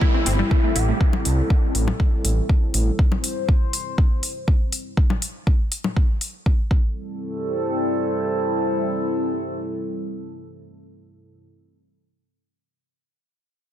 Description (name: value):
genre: melodic techno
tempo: 121 BPM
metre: 4/4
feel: straight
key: A minor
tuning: A4 = 440 Hz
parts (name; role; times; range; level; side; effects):
- fat analog lead; melody; 0.0-1.0 s; E4 to G4; -29 LUFS; left 3 dB; analog chorus, sidechain pumping, tape echo
- dark analog pad; sustained chords; 0.0-11.5 s; G3 to C5; -26 LUFS; equal; chorus, phaser, sidechain pumping
- tight sequenced synth; arpeggios; 0.0-0.9 s; G3 to E4; -28 LUFS; right 1 dB; chorus, sidechain pumping, tape echo
- electronic kick drum; drums; 0.0-6.8 s; none; -18 LUFS; equal; small room ambience
- downlifter; sound effects; 0.0-3.0 s; none; -32 LUFS; right 1 dB; none
- dark detuned saw bass; bass; 0.3-2.9 s; G1 to C2; -20 LUFS; equal; sidechain pumping
- electronic hi-hat and congas; drums; 0.3-6.3 s; none; -26 LUFS; left 3 dB; small room ambience
room: light reverb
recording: dense, heavily limited modern master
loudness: -19 LUFS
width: side -11 dB against mid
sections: 0.0-7.0 A section; 7.0-10.9 B section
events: none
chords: 0.0 Am7; 3.0 C; 5.0 N.C.; 6.7 Am7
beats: 0.01 0.51 | 1.01 1.50 2.00 2.49 | 2.99 3.49 3.98 4.48 | 4.97 5.47 5.96 6.46 | 6.96 7.45 7.95 8.44 | 8.94 9.44 9.93 10.43